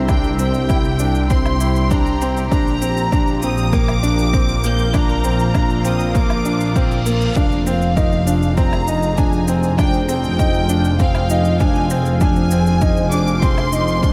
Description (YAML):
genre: piano and strings electronica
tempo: 99 BPM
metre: 4/4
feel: straight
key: F dorian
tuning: A4 = 439 Hz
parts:
  - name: lush unison pad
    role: sustained chords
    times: 0.0-14.1 s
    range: Bb2 to F5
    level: -26 LUFS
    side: equal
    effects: chorus
  - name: rich symphonic double bass section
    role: bass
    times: 0.0-14.1 s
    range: F1 to C2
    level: -22 LUFS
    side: equal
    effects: sidechain pumping
  - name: rich studio violin section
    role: melody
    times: 0.1-14.1 s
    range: F5 to G6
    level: -27 LUFS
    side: equal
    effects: tape echo
  - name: clear concert grand piano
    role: riff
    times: 0.1-14.1 s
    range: Bb3 to E4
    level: -24 LUFS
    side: equal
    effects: tape echo
  - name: electronic kick drum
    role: drums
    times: 0.1-14.1 s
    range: none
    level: -20 LUFS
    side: equal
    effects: overdrive
  - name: shaker and woodblock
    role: drums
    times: 0.1-14.1 s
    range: none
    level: -35 LUFS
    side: equal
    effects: overdrive
  - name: reverse cymbal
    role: sound effects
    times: 6.6-7.4 s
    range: none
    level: -37 LUFS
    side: equal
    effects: none
room: moderate huge ambient reverb, RT60 7.1 s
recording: dreamy mix soaked in reverb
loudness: -17 LUFS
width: mono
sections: 0.0-14.1 A section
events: reverse cymbal 6.6-7.4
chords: 0.0 C; 2.5 Bb; 7.4 Fm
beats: | 0.09 0.69 1.30 1.91 | 2.51 3.12 3.73 4.33 | 4.94 5.54 6.15 6.76 | 7.36 7.97 8.57 9.18 | 9.79 10.39 11.00 11.60 | 12.21 12.82 13.42 14.03